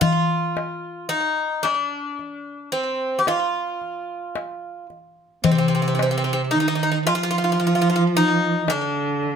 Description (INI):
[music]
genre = Turkish makam ensemble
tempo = 111 BPM (eighths)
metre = 10/8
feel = straight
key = unclear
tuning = A4 = 439 Hz
[part]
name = Greek bouzouki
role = melody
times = 0.0-9.4 s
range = C4 to G4-30c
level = -22 LUFS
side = equal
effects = slapback echo, plate reverb
[part]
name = darbuka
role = percussion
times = 0.0-9.4 s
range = none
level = -22 LUFS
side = left 5 dB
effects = none
[part]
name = rich cello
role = second line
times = 5.4-9.4 s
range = C3 to F3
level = -22 LUFS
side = right 3 dB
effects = none
[sound]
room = moderate studio reverb, RT60 0.6 s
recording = none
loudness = -19 LUFS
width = side -7 dB against mid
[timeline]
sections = 0.0-5.4 A section; 5.4-9.4 B section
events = none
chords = none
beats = | 0.01 0.55 1.10 1.64 2.18 2.72 3.27 3.81 4.35 4.89 | 5.43 5.97 6.52 7.06 7.60 8.14 8.68 9.22